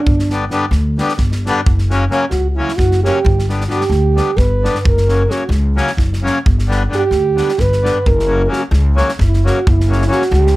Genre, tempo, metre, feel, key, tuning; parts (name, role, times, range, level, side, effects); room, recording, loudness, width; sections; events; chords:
balkan folk, Balkan wedding band; 263 BPM (eighths); 7/8; straight; F# phrygian dominant; A4 = 440 Hz
mellow French horn; melody; 0.0-10.6 s; D4 to B4; -17 LUFS; right 3 dB
upright bass; bass; 0.1-10.6 s; F#1 to D2; -15 LUFS; equal
natural country drum kit; percussion; 0.1-10.5 s; kick drum, snare drum; -19 LUFS; equal
accordion; accompaniment; 0.3-10.2 s; C#3 to D4; -18 LUFS; left 2 dB
little or no reverb; -12 LUFS; side -18 dB against mid
0.0-10.6 A section
French horn solo 0.0-10.6
0.1 G; 1.7 F#; 3.3 G; 4.9 F#; 6.5 G; 8.1 F#